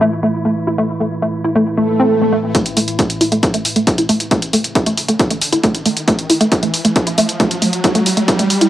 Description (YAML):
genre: driving peak-time techno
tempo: 136 BPM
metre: 4/4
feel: straight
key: unclear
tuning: A4 = 440 Hz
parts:
  - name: woody wave-folded pluck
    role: riff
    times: 0.0-8.7 s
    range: A3 to E4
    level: -16 LUFS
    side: equal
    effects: ensemble chorus, sidechain pumping, cassette tape, tape echo
  - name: metallic inharmonic drone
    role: drone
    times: 0.0-2.6 s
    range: A2 to E3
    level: -23 LUFS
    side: right 1 dB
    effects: chorus, built-in reverb, sidechain pumping, cassette tape
  - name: swell and riser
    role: sound effects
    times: 1.8-8.7 s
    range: none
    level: -19 LUFS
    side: right 1 dB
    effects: none
  - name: electronic hi-hat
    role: drums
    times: 2.5-8.7 s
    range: none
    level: -19 LUFS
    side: equal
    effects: low-pass filter on hats, cassette tape, low-pass filter on room
  - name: electronic kick drum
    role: drums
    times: 2.5-8.4 s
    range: none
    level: -16 LUFS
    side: equal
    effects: high-pass filter on kick, cassette tape, high-pass filter on room
room: light reverb, digital ambience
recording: home recording on cassette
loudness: -13 LUFS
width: side -13 dB against mid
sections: 0.0-2.5 A section; 2.5-8.7 B section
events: filter sweep on synth arpeggio sound 0.0-2.5, 2.5-8.7; swell 1.8-2.5; build-up 2.5-8.7; riser 5.1-8.7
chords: 0.0 A5; 2.5 N.C.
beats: 0.34 | 0.78 1.22 1.66 2.10 | 2.55 2.99 3.43 3.87 | 4.31 4.75 5.19 5.63 | 6.08 6.52 6.96 7.40 | 7.84 8.28